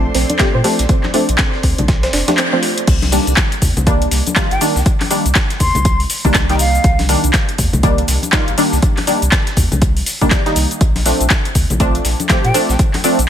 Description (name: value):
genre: deep house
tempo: 121 BPM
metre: 4/4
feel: swing 60% on 16ths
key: C dorian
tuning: A4 = 440 Hz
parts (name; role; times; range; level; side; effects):
- airy breathy pad; sustained chords; 0.0-2.8 s; C4 to D5; -29 LUFS; right 1 dB; none
- filtered dub chord stab; stabs; 0.0-13.2 s; Eb3 to G4; -18 LUFS; equal; wide subtle chorus, sidechain pumping, dub echo
- sub bass with octave; bass; 0.0-13.3 s; F1 to Bb2; -18 LUFS; equal; sidechain pumping
- string machine, violins; texture; 0.0-2.9 s; C5 to C6; -31 LUFS; equal; ensemble chorus, sidechain pumping
- soft round pluck; arpeggios; 0.1-2.6 s; C4 to C5; -23 LUFS; right 3 dB; chorus, vintage 12-bit sampler grit, sidechain pumping, digital delay
- breakbeat sampler-style drum kit; drums; 0.1-13.2 s; hi-hat, snare drum; -28 LUFS; equal; none
- deep house drum kit; drums; 0.1-13.3 s; crash cymbal, handclaps, hi-hat, shaker; -19 LUFS; left 1 dB; overdrive
- congas; percussion; 0.3-13.0 s; none; -24 LUFS; left 3 dB; none
- electronic kick drum; drums; 0.4-12.9 s; none; -16 LUFS; equal; overdrive
- breathy hollow jazz flute; melody; 4.5-7.0, 12.4-12.6 s; F5 to C6; -22 LUFS; equal; dub echo
room: little or no reverb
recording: none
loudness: -12 LUFS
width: side -10 dB against mid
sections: 0.0-2.9 A section; 2.9-13.3 B section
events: kick drops out 2.4-2.9; band accent 2.4; drop 2.9-13.3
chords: 0.0 Bbmaj9; 2.9 Cm9; 10.8 Bbmaj9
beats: 0.40 | 0.89 1.39 1.88 2.38 | 2.88 3.37 3.87 4.36 | 4.86 5.35 5.85 6.35 | 6.84 7.34 7.83 8.33 | 8.82 9.32 9.82 10.31 | 10.81 11.30 11.80 12.30 | 12.79